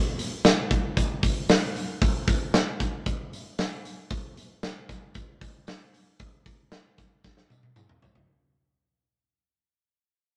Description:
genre	indie pop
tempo	115 BPM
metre	4/4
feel	straight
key	none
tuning	none
part	big rock drum kit	drums	0.2-8.3 s	hi-hat, kick drum, snare drum, toms	-26 LUFS	equal	none
part	tambourine	percussion	0.2-8.2 s	none	-45 LUFS	equal	none
room	light reverb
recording	none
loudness	-26 LUFS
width	mono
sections	0.0-8.3 A section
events	fade-out 0.0-8.3; drum fill 7.2-8.3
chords	none

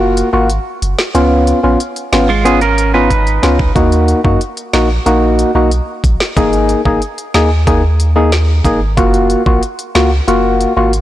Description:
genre	dancehall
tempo	92 BPM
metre	4/4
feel	straight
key	unclear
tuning	A4 = 440 Hz
part	percussive organ stab	accompaniment	0.0-10.9 s	Bb3 to Ab4	-13 LUFS	left 1 dB	chorus
part	punchy sub bass	bass	0.0-11.0 s	Gb1 to Gb2	-14 LUFS	equal	none
part	afro-pop drum kit	drums	0.2-11.0 s	hi-hat, kick drum, snare drum	-17 LUFS	equal	overdrive, vintage 12-bit sampler grit
part	clean electric guitar	arpeggios	2.3-3.7 s	Ab3 to Cb5	-15 LUFS	right 6 dB	none
room	light reverb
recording	blown-out, overdriven recording, overdrive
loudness	-10 LUFS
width	side -13 dB against mid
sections	0.0-11.0 A section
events	break 0.0-3.8; drum fill 3.1-3.8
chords	0.0 Gbmaj7; 1.1 Db7; 3.8 Ebm; 6.4 Absus2; 9.0 Gbmaj7

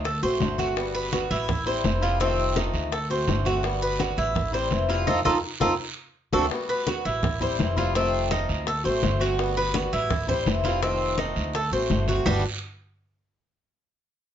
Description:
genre	latin, Cuban son and guajira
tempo	167 BPM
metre	4/4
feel	straight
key	G major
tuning	A4 = 440 Hz
part	picked swing-style acoustic guitar	accompaniment	0.0-12.4 s	C3 to F#4	-28 LUFS	left 3 dB	none
part	Cuban tres	arpeggios	0.0-12.4 s	G3 to C5	-27 LUFS	right 2 dB	none
part	upright bass	bass	0.0-12.4 s	F1 to F2	-29 LUFS	right 1 dB	none
part	congas	percussion	0.0-12.3 s	none	-30 LUFS	left 1 dB	none
part	guiro	percussion	0.0-12.3 s	none	-37 LUFS	right 6 dB	none
part	bongos	percussion	0.1-12.3 s	none	-32 LUFS	left 5 dB	none
room	moderate studio reverb, RT60 0.6 s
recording	nothing above 7.6 kHz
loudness	-22 LUFS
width	side -10 dB against mid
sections	0.0-6.5 A section; 6.5-12.3 B section; 12.3-13.7 C section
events	drum fill 5.1-6.5; band accent 5.1-6.5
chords	0.0 D7; 0.8 Gmaj7; 1.5 Am7; 2.2 F7; 2.9 D7; 3.6 Gmaj7; 4.4 Am7; 5.1 F7; 5.8 D7; 6.5 Gmaj7; 7.2 Am7; 8.0 F7; 8.7 D7; 9.4 Gmaj7; 10.1 Am7; 10.8 F7; 11.5 D7; 12.3 Gmaj7(no3)

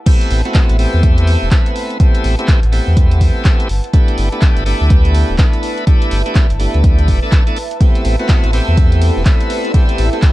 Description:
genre	deep house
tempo	124 BPM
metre	4/4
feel	swing 61% on 16ths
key	A dorian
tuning	A4 = 440 Hz
part	warbly tape-like pad	sustained chords	0.0-10.3 s	E4 to A5	-27 LUFS	right 3 dB	chorus, built-in reverb, sidechain pumping
part	bright tonewheel organ	stabs	0.1-10.3 s	A3 to B4	-20 LUFS	equal	overdrive, slow rotary speaker, sidechain pumping, tape echo
part	electronic kick drum	drums	0.1-10.3 s	none	-11 LUFS	equal	none
part	punchy analog drum machine	drums	0.1-10.3 s	crash cymbal, handclaps, hi-hat, ride cymbal	-26 LUFS	equal	low-pass filter on hats, low-pass filter on cymbals, low-pass filter on snare
part	sub bass with octave	bass	0.3-10.1 s	D1 to E2	-13 LUFS	equal	sidechain pumping
part	ethereal airy pad	texture	8.5-10.3 s	E4 to D5	-25 LUFS	left 2 dB	ensemble chorus, built-in reverb, sidechain pumping
room	little or no reverb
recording	dark, warm production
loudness	-10 LUFS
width	side -17 dB against mid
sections	0.1-10.3 A section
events	drop 0.1-10.3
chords	0.1 Am9; 3.7 G69; 7.8 Am9

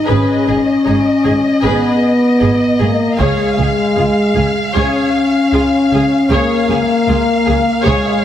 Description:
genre	cinematic, epic orchestral film score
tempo	77 BPM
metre	4/4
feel	straight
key	unclear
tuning	A4 = 438 Hz
part	warm symphonic violin section	melody	0.0-8.2 s	D#5 to E#5	-20 LUFS	left 3 dB	none
part	mellow French horn section	sustained chords	0.0-8.2 s	G#3 to C#4	-14 LUFS	left 2 dB	none
part	warm symphonic violin section	second line	0.1-8.2 s	D#4 to C#5	-23 LUFS	left 1 dB	none
part	rich symphonic viola section	accompaniment	0.1-8.2 s	G#4	-23 LUFS	right 2 dB	none
part	rich studio double bass section	bass	0.1-7.9 s	G#1 to C#2	-21 LUFS	right 3 dB	none
part	rich symphonic cello section	bass	0.1-7.9 s	C#2 to G#2	-22 LUFS	right 2 dB	none
part	taiko ensemble	drums	3.2-4.7 s	none	-24 LUFS	equal	none
room	wet scoring stage reverb, RT60 1.9 s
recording	heavily compressed radio sound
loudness	-11 LUFS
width	side -10 dB against mid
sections	0.0-8.2 A section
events	none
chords	0.0 G#m; 3.2 C#

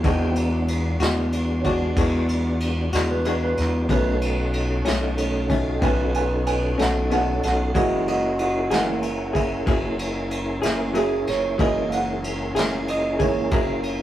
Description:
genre	slow blues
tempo	62 BPM (dotted quarters)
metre	12/8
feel	straight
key	unclear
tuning	A4 = 438 Hz
part	electric guitar through a small old amp	accompaniment	0.0-13.7 s	B2 to G#4	-25 LUFS	left 2 dB	tremolo
part	warm upright piano	accompaniment	0.0-14.0 s	D#3 to G#5	-26 LUFS	right 2 dB	none
part	tonewheel organ	sustained chords	0.0-14.0 s	D#3 to G5	-28 LUFS	equal	slow rotary speaker, chorus vibrato
part	growling FM bass	bass	0.0-14.0 s	F#1 to E2	-26 LUFS	equal	none
part	vintage brush drum kit	drums	0.0-14.0 s	kick drum, ride cymbal, snare drum	-27 LUFS	equal	none
room	moderate studio reverb, RT60 0.6 s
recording	rough rehearsal-room recording, tube saturation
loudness	-20 LUFS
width	side -12 dB against mid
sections	0.0-14.0 A section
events	upright piano solo 0.0-14.0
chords	0.0 E9; 3.9 B9; 7.8 F#9

